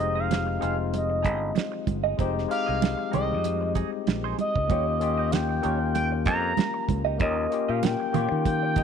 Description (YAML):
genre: lush 1970s-style soul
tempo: 96 BPM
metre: 4/4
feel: swing 54% on 16ths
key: unclear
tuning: A4 = 439 Hz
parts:
  - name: expressive synth lead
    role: melody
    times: 0.0-8.8 s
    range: Eb5 to Bb5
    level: -28 LUFS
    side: right 1 dB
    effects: chorus
  - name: barky tine electric piano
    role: accompaniment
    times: 0.0-8.8 s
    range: G3 to Bb4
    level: -30 LUFS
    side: left 13 dB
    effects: none
  - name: direct-recorded clean electric guitar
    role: riff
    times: 0.0-8.8 s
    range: Eb4 to Eb5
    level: -33 LUFS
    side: right 14 dB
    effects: wah, lush chorus
  - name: fingered electric bass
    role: bass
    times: 0.0-8.8 s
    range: F1 to Eb3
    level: -29 LUFS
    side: equal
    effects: none
  - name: damped 70s drum kit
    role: drums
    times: 0.3-8.8 s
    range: hi-hat, kick drum, snare drum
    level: -28 LUFS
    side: right 4 dB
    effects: none
  - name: congas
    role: percussion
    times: 0.3-8.8 s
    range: none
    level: -33 LUFS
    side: right 12 dB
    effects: none
room: light reverb, small room reverb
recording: 1960s-style stereo with parts hard left and right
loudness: -23 LUFS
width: side -7 dB against mid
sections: 0.0-8.8 A section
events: none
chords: 0.0 Fm7; 4.7 Eb7